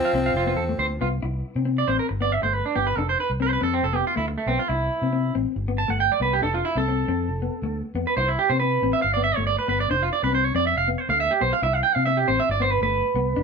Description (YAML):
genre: highlife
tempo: 138 BPM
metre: 4/4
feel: straight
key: C major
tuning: A4 = 440 Hz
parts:
  - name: growling tenor saxophone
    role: melody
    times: 0.0-1.0 s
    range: C4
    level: -25 LUFS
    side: right 1 dB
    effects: none
  - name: clear viola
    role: second line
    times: 0.0-1.0 s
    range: F3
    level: -33 LUFS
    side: left 1 dB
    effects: none
  - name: clean electric guitar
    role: accompaniment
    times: 0.0-13.4 s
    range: A3 to E4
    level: -28 LUFS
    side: left 8 dB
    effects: spring reverb
  - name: electric guitar at the edge of break-up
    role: arpeggios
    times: 0.1-13.4 s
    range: A3 to A5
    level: -22 LUFS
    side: right 5 dB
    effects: none
  - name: fingered electric bass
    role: bass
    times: 0.1-13.4 s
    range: F1 to C3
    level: -27 LUFS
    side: equal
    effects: none
room: moderate studio ambience, RT60 0.5 s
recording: band playing live in one room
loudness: -20 LUFS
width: side -5 dB against mid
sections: 0.0-1.2 A section; 1.2-13.4 B section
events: clean electric guitar solo 1.2-13.4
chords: 0.0 F; 1.2 C; 2.1 G; 3.0 F; 4.7 C; 5.6 G; 6.4 F; 8.2 C; 9.0 G; 9.9 F5; 11.6 C; 12.5 G